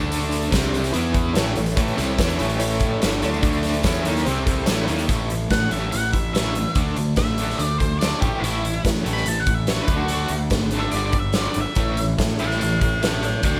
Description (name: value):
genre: classic rock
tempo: 144 BPM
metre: 4/4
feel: straight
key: A mixolydian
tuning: A4 = 444 Hz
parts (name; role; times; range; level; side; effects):
- mellow reed electric piano; accompaniment; 0.0-5.0, 11.8-13.6 s; B3 to B5; -31 LUFS; equal; fast tremolo
- bright tonewheel organ; sustained chords; 0.0-13.6 s; none; barely audible; none; none
- crunchy overdriven guitar; riff; 0.0-13.6 s; G2 to E4; -32 LUFS; equal; none
- crunchy overdriven guitar; riff; 0.0-13.6 s; G2 to E4; -31 LUFS; equal; none
- distorted electric guitar; riff; 0.0-5.1 s; G2 to E4; -33 LUFS; equal; distortion
- fuzz picked electric bass; bass; 0.0-13.6 s; G1 to A2; -28 LUFS; equal; overdrive
- tambourine; percussion; 0.0-5.1 s; none; -43 LUFS; equal; none
- big rock drum kit; drums; 0.1-13.5 s; hi-hat, kick drum, snare drum; -26 LUFS; equal; none
- octave-fuzz lead guitar; melody; 5.5-13.6 s; E4 to B5; -29 LUFS; equal; distortion
room: small room ambience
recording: none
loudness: -21 LUFS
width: mono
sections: 0.0-5.1 A section; 5.1-13.6 B section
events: reed electric piano fill 0.9-1.8; lead electric guitar solo 5.1-13.6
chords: 0.0 D5; 0.5 C5; 0.9 E5; 1.4 A; 3.4 D5; 3.8 A; 4.3 C5; 4.7 A; 6.8 D; 8.2 A; 9.9 D; 10.9 G; 11.8 A